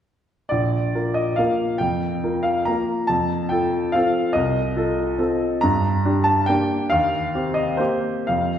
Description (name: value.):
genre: classical, piano waltz.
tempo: 115-151 BPM.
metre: 3/4.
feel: rubato.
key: Bb major.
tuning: A4 = 440 Hz.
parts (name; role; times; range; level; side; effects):
clear baby grand piano; solo; 0.5-8.6 s; Bb1 to Bb5; -19 LUFS; equal; none.
room: wet scoring stage reverb, RT60 1.4 s.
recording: heard from further back in the room.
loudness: -19 LUFS.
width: side -9 dB against mid.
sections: 0.5-8.6 A section.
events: none.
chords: 0.5 Bb; 3.1 F7; 5.6 Gm; 6.9 Cm7/Eb.